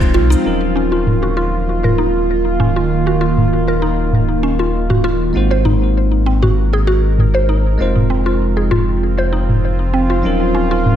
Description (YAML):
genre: organic downtempo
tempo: 98 BPM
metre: 4/4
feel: swing 54% on 16ths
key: Eb dorian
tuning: A4 = 439 Hz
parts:
  - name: bell-like tine electric piano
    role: accompaniment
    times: 0.0-11.0 s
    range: Gb3 to C5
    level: -23 LUFS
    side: equal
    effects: phaser, sidechain pumping, ping-pong delay
  - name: bowed-like drone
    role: sustained chords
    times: 0.0-11.0 s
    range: Eb3 to Bb4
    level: -19 LUFS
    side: right 2 dB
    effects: built-in reverb, sidechain pumping
  - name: warm sub bass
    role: bass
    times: 0.0-11.0 s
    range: Eb1 to C2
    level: -17 LUFS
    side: equal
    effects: sidechain pumping
  - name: electronic cabasa and toms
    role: drums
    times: 0.0-11.0 s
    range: none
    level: -19 LUFS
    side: equal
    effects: low-pass filter on perc, low-pass filter on snare, low-pass filter on toms, low-pass filter on room
  - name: mallet-like synth pluck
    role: arpeggios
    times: 0.1-11.0 s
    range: C4 to C5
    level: -20 LUFS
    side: equal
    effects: chorus, phaser, ping-pong delay
room: moderate plate reverb, RT60 1.5 s, digital ambience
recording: dreamy mix soaked in reverb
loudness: -13 LUFS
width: side -10 dB against mid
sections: 0.5-11.0 A section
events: filter sweep on synth drone 0.5-11.0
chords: 0.5 Ebm9; 5.3 Ab7; 7.8 Fm7; 10.2 Ebm9